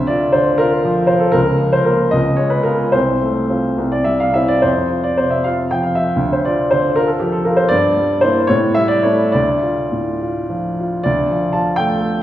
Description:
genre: classical, romantic character piece for solo piano.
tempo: 67-85 BPM (dotted quarters).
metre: 6/8.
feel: rubato.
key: F major, D minor from 7.7 s.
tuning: A4 = 440 Hz.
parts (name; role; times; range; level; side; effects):
warm upright piano; solo; 0.0-12.2 s; C2 to A5; -14 LUFS; equal; none.
room: wet recital hall reverb, RT60 1.6 s.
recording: heard from further back in the room.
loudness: -14 LUFS.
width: side -13 dB against mid.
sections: 0.0-11.1 A section; 11.1-12.2 B section.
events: none.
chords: 0.0 Bb/D; 1.4 Bbm/Db; 2.1 Db7; 2.9 F/C; 3.8 C; 4.6 F5; 6.2 Dm11; 7.7 Em7b5/G; 8.5 A5; 9.3 Dm.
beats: 0.60 | 1.36 2.13 | 2.94 3.79 | 4.64 5.46 | 6.23 6.97 | 7.71 8.49 | 9.33 10.20 | 11.05 11.77.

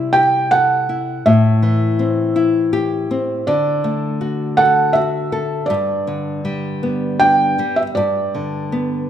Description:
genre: children's music, lullaby.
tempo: 81 BPM.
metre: 3/4.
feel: straight.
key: G major.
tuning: A4 = 441 Hz.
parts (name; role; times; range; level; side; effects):
felt-muted upright piano; melody; 0.0-9.1 s; D5 to G5; -16 LUFS; right 2 dB; none.
nylon-string guitar; accompaniment; 0.0-9.1 s; G2 to A4; -18 LUFS; left 2 dB; none.
room: moderate recital hall reverb, RT60 1.7 s.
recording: minimal, uncompressed stereo recording.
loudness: -15 LUFS.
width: side -10 dB against mid.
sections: 0.0-8.0 A section; 8.0-9.1 B section.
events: none.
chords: 0.0 C6; 1.3 Am7; 3.5 Dadd9; 5.7 G.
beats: 0.51 | 1.26 1.99 2.73 | 3.47 4.21 4.95 | 5.69 6.44 7.20 | 7.96 8.72.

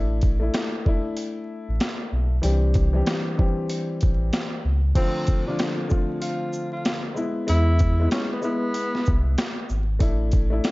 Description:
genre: hip hop, boom-bap hip-hop.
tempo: 95 BPM.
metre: 4/4.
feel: swing 62% on 16ths.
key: D minor.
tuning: A4 = 440 Hz.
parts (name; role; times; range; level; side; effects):
dark grand piano; accompaniment; 0.0-10.7 s; D3 to G4; -28 LUFS; left 2 dB; high-pass filter, low-pass filter.
sub bass with octave; bass; 0.0-10.6 s; G#1 to E2; -21 LUFS; equal; none.
boom bap sampler-style drum kit; drums; 0.2-10.7 s; crash cymbal, hi-hat, kick drum, shaker, snare drum; -24 LUFS; equal; none.
warm tenor saxophone; melody; 5.0-9.3 s; B3 to F4; -29 LUFS; equal; high-pass filter, low-pass filter, slapback echo.
room: little or no reverb.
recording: dark, warm production, vinyl crackle, nothing above 7.6 kHz.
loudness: -21 LUFS.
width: side -21 dB against mid.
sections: 0.0-5.0 A section; 5.0-10.7 B section.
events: break 5.0-7.5.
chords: 0.0 Asus4; 2.4 Cadd9; 5.0 Dm7; 7.2 E; 10.0 Asus4.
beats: 0.54 1.17 1.80 | 2.43 3.06 3.69 4.33 | 4.96 5.59 6.22 6.85 | 7.48 8.12 8.75 9.38 | 10.01 10.64.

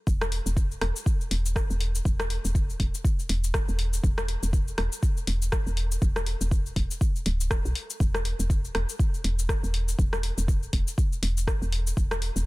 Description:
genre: afro house.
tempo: 121 BPM.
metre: 4/4.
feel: swing 57% on 16ths.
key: unclear.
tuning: A4 = 439 Hz.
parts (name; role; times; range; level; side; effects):
woody FM bass; bass; 0.1-12.5 s; D1 to B1; -28 LUFS; equal; sidechain pumping.
deep house drum kit; drums; 0.1-12.4 s; cabasa, hi-hat, rim click; -32 LUFS; left 1 dB; overdrive.
electronic kick drum; drums; 0.1-12.1 s; none; -25 LUFS; equal; none.
room: little or no reverb.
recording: dense, heavily limited modern master.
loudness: -24 LUFS.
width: side -21 dB against mid.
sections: 0.1-12.5 A section.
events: drop 0.1-12.5.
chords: none.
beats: | 0.07 0.56 1.06 1.56 | 2.05 2.55 3.04 3.54 | 4.04 4.53 5.03 5.52 | 6.02 6.52 7.01 7.51 | 8.00 8.50 8.99 9.49 | 9.99 10.48 10.98 11.47 | 11.97.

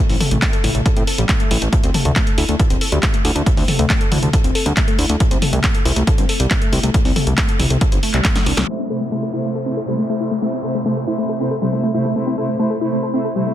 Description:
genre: uplifting trance.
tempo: 138 BPM.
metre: 4/4.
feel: straight.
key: A minor.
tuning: A4 = 440 Hz.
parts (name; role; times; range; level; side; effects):
wide unison pluck; arpeggios; 0.0-13.5 s; G3 to A4; -22 LUFS; left 2 dB; sidechain pumping, digital delay.
fat analog bass; bass; 0.1-8.6 s; D1 to A2; -18 LUFS; equal; sidechain pumping.
punchy analog drum machine; drums; 0.1-8.7 s; handclaps, hi-hat, snare drum, toms; -21 LUFS; left 1 dB; sidechain pumping on hats, low-pass filter on hats, low-pass filter on snare, sidechain pumping on toms, low-pass filter on toms, low-pass filter on room.
electronic kick drum; drums; 0.4-8.3 s; none; -17 LUFS; equal; none.
warm studio string section; sustained chords; 8.7-13.5 s; C3 to C5; -21 LUFS; right 1 dB; sidechain pumping.
downlifter; sound effects; 8.9-12.2 s; none; -35 LUFS; equal; none.
room: little or no reverb.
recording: dense, heavily limited modern master, low-pass filter.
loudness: -15 LUFS.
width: side -12 dB against mid.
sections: 0.0-8.7 A section; 8.7-13.5 B section.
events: drum fill 8.4-8.7; band accent 8.6; filter sweep on synth arpeggio sound 8.7-13.5; filter sweep 8.7-13.5.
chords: 0.0 Am; 1.7 D5; 5.2 C5; 8.7 Am.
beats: 0.42 0.86 1.29 | 1.73 2.16 2.60 3.03 | 3.46 3.90 4.33 4.77 | 5.20 5.64 6.07 6.51 | 6.94 7.38 7.81 8.25 | 8.68 9.12 9.55 9.99 | 10.42 10.86 11.29 11.72 | 12.16 12.60 13.03 13.46.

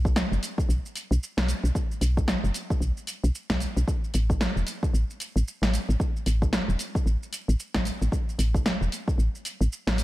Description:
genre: organic downtempo.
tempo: 113 BPM.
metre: 4/4.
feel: swing 59% on 16ths.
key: unclear.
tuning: A4 = 440 Hz.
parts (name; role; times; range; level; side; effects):
woody FM bass; bass; 0.0-10.0 s; E1 to B1; -24 LUFS; equal; none.
deep house drum kit; drums; 0.1-10.0 s; hi-hat, shaker, snare drum; -30 LUFS; equal; overdrive.
electronic kick drum; drums; 0.1-9.2 s; none; -27 LUFS; equal; none.
room: little or no reverb.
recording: none.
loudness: -24 LUFS.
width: side -17 dB against mid.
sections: 0.0-10.0 A section.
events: none.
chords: none.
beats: 0.16 0.69 1.22 | 1.75 2.28 2.81 3.35 | 3.88 4.41 4.94 5.47 | 6.00 6.53 7.06 7.59 | 8.12 8.65 9.19 9.72.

